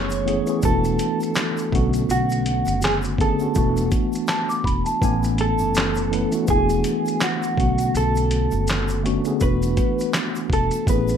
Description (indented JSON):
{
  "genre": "lo-fi hip hop",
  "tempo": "82 BPM",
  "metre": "4/4",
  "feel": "swing 56% on 16ths",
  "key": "unclear",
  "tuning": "A4 = 440 Hz",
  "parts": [
    { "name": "mellow electric guitar", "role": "melody", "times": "0.0-11.2 s", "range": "F#4 to C#5", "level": "-25 LUFS", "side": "right 2 dB", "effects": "wide subtle chorus, low-pass filter, plate reverb" },
    { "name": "mellow tine electric piano", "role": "accompaniment", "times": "0.0-11.2 s", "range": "D3 to G#5", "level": "-23 LUFS", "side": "left 1 dB", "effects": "medium stereo tremolo, low-pass filter" },
    { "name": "upright bass", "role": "bass", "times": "0.0-11.2 s", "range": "E1 to B1", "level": "-25 LUFS", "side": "equal", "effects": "none" },
    { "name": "dusty soul sampler-style drum kit", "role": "drums", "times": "0.1-11.2 s", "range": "handclaps, hi-hat, kick drum, shaker, snare drum", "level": "-24 LUFS", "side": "equal", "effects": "vintage 12-bit sampler grit" },
    { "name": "tube shaker", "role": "percussion", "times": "0.1-11.2 s", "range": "none", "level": "-42 LUFS", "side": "left 7 dB", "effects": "none" },
    { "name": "celesta", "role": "second line", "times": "4.3-5.2 s", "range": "A5 to D6", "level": "-27 LUFS", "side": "right 1 dB", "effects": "low-pass filter, analog delay" }
  ],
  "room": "light reverb",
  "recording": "none",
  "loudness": "-18 LUFS",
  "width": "side -8 dB against mid",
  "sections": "0.0-11.2 A section",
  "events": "none",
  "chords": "0.0 Amaj9; 0.6 E7sus4; 1.7 Bm9; 3.6 E7sus4; 5.0 Amaj9; 6.5 E7sus4; 7.6 Bm9; 9.4 E7sus4",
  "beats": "0.62 1.36 | 2.09 2.82 3.55 4.28 | 5.01 5.75 6.48 7.21 | 7.94 8.67 9.41 10.14 | 10.87"
}